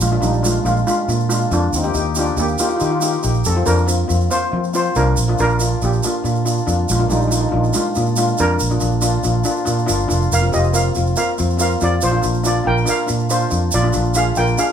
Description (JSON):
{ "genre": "calypso", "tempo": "140 BPM", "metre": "4/4", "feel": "straight", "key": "Bb major", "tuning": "A4 = 440 Hz", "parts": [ { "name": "steel pan", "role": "melody", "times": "0.0-14.7 s", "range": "G3 to G5", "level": "-20 LUFS", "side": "equal", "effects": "none" }, { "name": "fingered electric bass", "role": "bass", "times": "0.0-14.5 s", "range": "F1 to F3", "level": "-19 LUFS", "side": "right 1 dB", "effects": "none" }, { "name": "tube shaker", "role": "percussion", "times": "0.0-14.7 s", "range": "none", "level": "-25 LUFS", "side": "right 4 dB", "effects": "none" }, { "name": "steel pan", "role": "accompaniment", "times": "0.1-14.7 s", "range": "Bb3 to G4", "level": "-21 LUFS", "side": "left 3 dB", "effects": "none" } ], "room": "moderate large studio reverb, RT60 0.9 s", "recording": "band playing live in one room", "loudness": "-15 LUFS", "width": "side -8 dB against mid", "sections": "0.0-10.3 A section; 10.3-14.7 A section", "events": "none", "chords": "0.0 Bb7; 1.7 Ebadd9; 3.5 Fsus4; 5.2 Bb; 10.3 Fsus4; 12.0 Bbadd9", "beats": "| 0.02 0.45 0.88 1.31 | 1.74 2.17 2.60 3.03 | 3.46 3.88 4.31 4.74 | 5.17 5.60 6.03 6.46 | 6.88 7.31 7.74 8.17 | 8.60 9.03 9.45 9.88 | 10.31 10.74 11.16 11.59 | 12.02 12.45 12.88 13.30 | 13.73 14.16 14.59" }